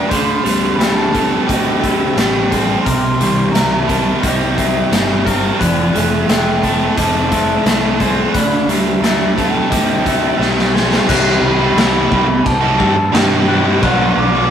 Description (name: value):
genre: rock, shoegaze and dream pop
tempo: 88 BPM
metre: 4/4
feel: straight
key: unclear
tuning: A4 = 440 Hz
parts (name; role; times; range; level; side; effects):
- breathy mellow concert flute; melody; 0.0-14.5 s; D5 to D6; -22 LUFS; right 1 dB; none
- twangy electric guitar; arpeggios; 0.0-14.5 s; G4 to C5; -26 LUFS; left 5 dB; none
- overdriven electric guitar; riff; 0.0-14.5 s; B2 to B4; -19 LUFS; left 5 dB; none
- overdriven electric guitar; riff; 0.0-14.5 s; B2 to B4; -17 LUFS; right 5 dB; none
- fuzz fingered electric bass; bass; 0.1-14.5 s; F1 to G2; -20 LUFS; equal; overdrive
- raw garage drum kit; drums; 0.1-14.0 s; crash cymbal, hi-hat, kick drum, snare drum; -19 LUFS; equal; none
room: wet stone room reverb, RT60 1.1 s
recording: rough rehearsal-room recording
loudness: -12 LUFS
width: side -8 dB against mid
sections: 0.0-11.1 A section; 11.1-14.5 B section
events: drum fill 10.4-11.1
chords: 0.1 D7sus4; 2.9 C7; 5.6 Fmaj7; 8.3 D9sus4; 11.1 C; 13.8 Bm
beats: | 0.11 0.80 1.49 2.17 | 2.86 3.54 4.23 4.91 | 5.60 6.29 6.97 7.66 | 8.34 9.03 9.71 10.40 | 11.08 11.77 12.45 13.13 | 13.82 14.50